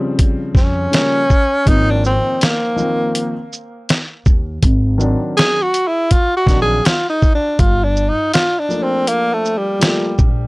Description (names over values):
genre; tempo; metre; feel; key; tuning
hip hop, jazz-hop; 81 BPM; 4/4; swing 60% on 16ths; unclear; A4 = 441 Hz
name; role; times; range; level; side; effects
dark grand piano; accompaniment; 0.0-10.1 s; Db3 to F4; -22 LUFS; left 1 dB; none
dusty soul sampler-style drum kit; drums; 0.2-10.4 s; hi-hat, kick drum, shaker, snare drum; -14 LUFS; equal; none
upright bass; bass; 0.5-10.5 s; G1 to F2; -18 LUFS; equal; none
breathy tenor saxophone; melody; 0.6-10.3 s; G3 to Ab4; -16 LUFS; equal; analog delay
room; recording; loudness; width
little or no reverb; dry, gritty hardware recording, cassette tape; -13 LUFS; side -24 dB against mid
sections
0.0-10.5 A section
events
tenor saxophone solo 0.0-10.5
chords
0.0 Eb13 (rootless); 1.7 Ab69; 4.6 Ab7#11; 7.6 Gm7